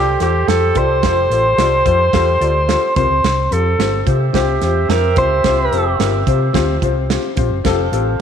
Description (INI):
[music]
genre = uptempo 1960s-style soul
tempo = 109 BPM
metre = 4/4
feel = straight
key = F major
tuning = A4 = 443 Hz
[part]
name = warm alto saxophone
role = melody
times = 0.0-6.0 s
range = G4 to C5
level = -16 LUFS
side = equal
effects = none
[part]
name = mellow horn section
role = second line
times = 0.0-8.2 s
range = G4 to F5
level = -23 LUFS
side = right 10 dB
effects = none
[part]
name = warm upright piano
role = accompaniment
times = 0.0-8.1 s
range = C3 to D5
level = -20 LUFS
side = left 9 dB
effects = none
[part]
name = hollow-body short-scale fingered electric bass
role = bass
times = 0.0-8.1 s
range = F1 to C3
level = -18 LUFS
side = equal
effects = none
[part]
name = warm soul drum kit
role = drums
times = 0.2-8.1 s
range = hi-hat, kick drum, snare drum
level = -21 LUFS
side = right 5 dB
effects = none
[sound]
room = moderate echo chamber reverb, RT60 2.1 s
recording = 1960s-style stereo with parts hard left and right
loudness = -13 LUFS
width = side -8 dB against mid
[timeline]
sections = 0.0-8.2 A section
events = none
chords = 0.0 Fadd9; 3.0 Csus4; 7.7 Fadd9